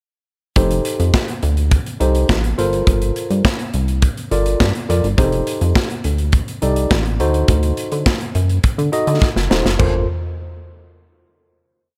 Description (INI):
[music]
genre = early-eighties boogie funk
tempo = 104 BPM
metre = 4/4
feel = straight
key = G minor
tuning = A4 = 440 Hz
[part]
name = mellow tine electric piano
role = accompaniment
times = 0.6-10.1 s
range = Eb4 to Eb5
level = -23 LUFS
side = equal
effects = none
[part]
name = chorused synth bass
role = bass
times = 0.6-10.1 s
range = Eb1 to D3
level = -20 LUFS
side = equal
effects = none
[part]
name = modern studio drum kit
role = drums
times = 0.6-9.9 s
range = crash cymbal, hi-hat, kick drum, snare drum, toms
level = -21 LUFS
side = equal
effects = gated reverb
[sound]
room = small room ambience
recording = none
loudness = -17 LUFS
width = mono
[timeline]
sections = 0.6-9.8 verse; 9.8-12.0 final chord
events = drum fill 9.2-9.8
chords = 0.6 F9; 2.6 Gm11; 5.2 F9; 7.2 D7b9; 9.8 Gm11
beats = | 0.56 1.14 1.72 2.29 | 2.87 3.45 4.02 4.60 | 5.18 5.75 6.33 6.91 | 7.49 8.06 8.64 9.22 | 9.79